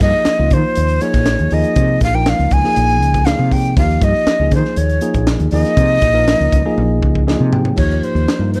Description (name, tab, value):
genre	electric jazz fusion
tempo	120 BPM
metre	4/4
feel	straight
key	Eb mixolydian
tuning	A4 = 440 Hz
part	breathy jazz flute	melody	0.0-8.6 s	C5 to Ab5	-20 LUFS	equal	slapback echo
part	tine electric piano	accompaniment	0.0-8.6 s	F3 to G5	-22 LUFS	equal	none
part	woody fretless electric bass	bass	0.0-8.6 s	Bb1 to Eb3	-18 LUFS	equal	none
part	crisp fusion drum kit	drums	0.0-8.6 s	crash cymbal, hi-hat, kick drum, snare drum, toms	-21 LUFS	equal	none
room	studio reverb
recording	none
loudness	-15 LUFS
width	mono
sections	0.0-7.8 A section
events	drum fill 6.8-7.8; tine electric piano fill 7.0-7.8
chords	0.0 Eb9sus4; 7.8 Eb7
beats	0.26 0.77 1.26 | 1.76 2.27 2.77 3.27 | 3.77 4.27 4.77 5.27 | 5.77 6.27 6.77 7.27 | 7.77 8.27